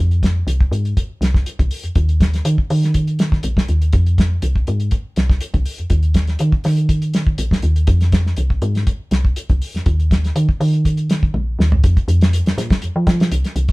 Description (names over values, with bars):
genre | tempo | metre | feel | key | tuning
afrobeat | 121 BPM | 4/4 | straight | F minor | A4 = 435 Hz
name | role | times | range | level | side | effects
woody FM bass | bass | 0.0-13.7 s | Bb1 to F3 | -16 LUFS | equal | none
cloth-damped thuddy drum kit | drums | 0.1-13.7 s | hi-hat, kick drum, snare drum, toms | -17 LUFS | equal | none
room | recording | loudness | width
light reverb | band playing live in one room | -15 LUFS | side -23 dB against mid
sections
0.0-11.8 A section; 11.8-13.7 B section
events
drum fill 11.3-11.8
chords
none